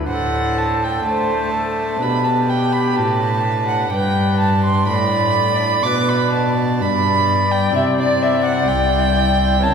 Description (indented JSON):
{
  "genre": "classical, baroque-style sonata movement with continuo",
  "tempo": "63 BPM",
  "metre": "4/4",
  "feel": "rubato",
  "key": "G major",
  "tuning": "A4 = 441 Hz",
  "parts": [
    { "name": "bright concert flute", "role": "melody", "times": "0.0-9.7 s", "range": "G4 to D5", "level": "-23 LUFS", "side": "left 6 dB", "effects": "none" },
    { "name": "chamber organ, cornet", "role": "accompaniment", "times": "0.0-9.7 s", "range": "C2 to D5", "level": "-23 LUFS", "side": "left 1 dB", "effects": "none" },
    { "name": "rich cello", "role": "bass", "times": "0.0-9.7 s", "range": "C2 to A3", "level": "-20 LUFS", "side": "equal", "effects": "none" },
    { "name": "warm violin", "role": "second line", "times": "0.1-9.7 s", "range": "D5 to D6", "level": "-19 LUFS", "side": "right 4 dB", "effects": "none" }
  ],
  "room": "wet church reverb, RT60 3.2 s",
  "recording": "recorded in a church or concert hall",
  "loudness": "-15 LUFS",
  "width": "side -6 dB against mid",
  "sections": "0.0-9.7 A section",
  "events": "none",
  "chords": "0.1 D5/A; 2.0 G/B; 3.9 G; 5.8 G/B; 7.8 C"
}